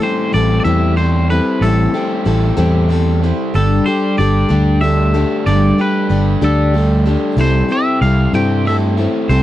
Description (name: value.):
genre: folk rock and heartland rock.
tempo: 62 BPM (dotted quarters).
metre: 6/8.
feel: straight.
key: unclear.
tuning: A4 = 439 Hz.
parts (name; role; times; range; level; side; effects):
twangy electric guitar; melody; 0.0-9.4 s; A4 to G5; -21 LUFS; equal; none.
picked plugged-in steel-string acoustic guitar; accompaniment; 0.0-9.4 s; G2 to A4; -18 LUFS; left 4 dB; none.
crunchy overdriven guitar; riff; 0.0-9.4 s; A2 to G4; -20 LUFS; right 2 dB; none.
fingered electric bass; bass; 0.3-9.4 s; G1 to G2; -14 LUFS; right 1 dB; none.
room: little or no reverb.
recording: dry, close 1970s-style studio recording.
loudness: -12 LUFS.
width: side -13 dB against mid.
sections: 0.0-9.4 A section.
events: none.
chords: 0.0 Am7; 3.5 Gsus2; 7.4 C6.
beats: 0.67 | 1.62 2.58 | 3.54 4.50 | 5.46 6.42 | 7.38 8.34 | 9.29.